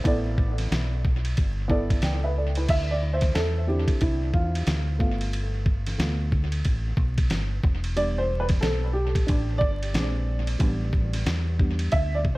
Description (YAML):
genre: hip hop, jazz-hop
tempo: 91 BPM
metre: 4/4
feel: swing 61% on 16ths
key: D dorian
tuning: A4 = 440 Hz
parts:
  - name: dark upright piano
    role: accompaniment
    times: 0.0-12.4 s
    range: D3 to G5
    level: -28 LUFS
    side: right 1 dB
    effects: analog delay
  - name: deep dub fingered electric bass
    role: bass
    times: 0.1-12.4 s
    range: E1 to E2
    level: -26 LUFS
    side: equal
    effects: none
  - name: dusty soul sampler-style drum kit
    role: drums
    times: 0.1-12.4 s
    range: crash cymbal, hi-hat, kick drum, ride cymbal, snare drum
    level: -26 LUFS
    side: equal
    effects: none
room: little or no reverb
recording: echo-heavy mix, vinyl crackle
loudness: -22 LUFS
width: side -20 dB against mid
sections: 0.0-2.7 A section; 2.7-12.4 B section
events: upright piano solo 2.7-12.4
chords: 0.1 A9sus4; 2.7 Dm9; 5.0 G9; 7.6 Em7; 9.9 Bb9; 10.6 A9sus4